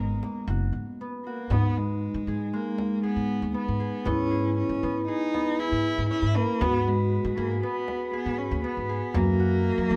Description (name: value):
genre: contemporary instrumental, chamber music in an uneven meter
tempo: 118 BPM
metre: 5/4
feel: straight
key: G# minor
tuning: A4 = 438 Hz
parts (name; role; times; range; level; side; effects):
- dark cello; melody; 0.0-10.0 s; G#3 to E4; -33 LUFS; equal; none
- vibraphone with soft mallets; second line; 0.0-10.0 s; B3 to F#4; -34 LUFS; equal; none
- concert harp; arpeggios; 0.0-10.0 s; G#3 to B4; -34 LUFS; equal; none
- upright bass; bass; 0.0-10.0 s; F#1 to F#3; -30 LUFS; equal; none
- frame drum; percussion; 0.2-10.0 s; none; -36 LUFS; equal; none
- mellow woodwind section; sustained chords; 6.6-10.0 s; F#4 to B5; -41 LUFS; equal; none
room: little or no reverb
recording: none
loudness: -27 LUFS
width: mono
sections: 0.0-1.5 A section; 1.5-10.0 B section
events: break 1.0-1.5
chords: 0.0 G#m9; 1.5 G#m; 4.1 C#m7/G#; 6.6 G#m7; 9.1 F#7